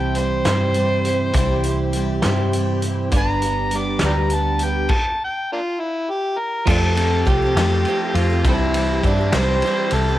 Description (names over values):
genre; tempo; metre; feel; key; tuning
folk rock and heartland rock; 68 BPM (dotted quarters); 6/8; straight; C major; A4 = 439 Hz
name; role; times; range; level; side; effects
overdriven harmonica; melody; 0.0-10.2 s; A3 to D6; -22 LUFS; equal; tape echo
picked twelve-string acoustic guitar; accompaniment; 0.0-10.2 s; G2 to G4; -26 LUFS; left 5 dB; none
tonewheel organ; sustained chords; 0.0-10.2 s; G3 to C5; -34 LUFS; equal; none
twelve-string electric guitar; riff; 0.0-10.2 s; C3 to C5; -25 LUFS; right 9 dB; none
hollow-body short-scale fingered electric bass; bass; 0.0-10.2 s; G1 to G2; -21 LUFS; equal; none
loose indie drum kit; drums; 0.1-10.1 s; crash cymbal, hi-hat, kick drum, ride cymbal, snare drum; -22 LUFS; equal; none
room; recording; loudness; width
light reverb; dark, warm production; -17 LUFS; side -14 dB against mid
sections
0.0-6.7 A section; 6.7-10.2 B section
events
harmonica solo 0.0-6.7; stop 4.9-6.7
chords
0.0 C; 3.1 G; 4.9 N.C.; 6.7 Fadd9; 8.5 C